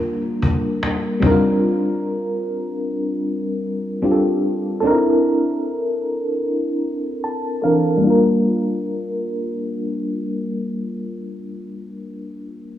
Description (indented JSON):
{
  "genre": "contemporary R&B",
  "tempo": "75 BPM",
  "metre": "4/4",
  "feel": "straight",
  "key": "G minor",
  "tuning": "A4 = 440 Hz",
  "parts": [
    { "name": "mellow FM electric piano", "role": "accompaniment", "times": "0.0-12.8 s", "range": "E3 to A5", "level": "-19 LUFS", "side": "equal", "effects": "chorus, tremolo" },
    { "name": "cajon", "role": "drums", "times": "0.0-1.5 s", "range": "none", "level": "-22 LUFS", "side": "equal", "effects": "none" }
  ],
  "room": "light reverb",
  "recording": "low-pass filter, small room ambience",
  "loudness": "-18 LUFS",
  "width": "side -11 dB against mid",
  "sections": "0.0-8.0 A section; 8.0-11.2 B section",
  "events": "filter sweep 0.0-8.0; FM electric piano fill 6.8-8.0",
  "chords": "0.0 Gm7; 1.2 C9sus4; 4.8 C13; 8.0 Gm7",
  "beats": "0.03 0.83 | 1.63 2.43 3.23 4.03 | 4.83 5.63 6.43 7.23 | 8.03 8.83 9.63 10.43"
}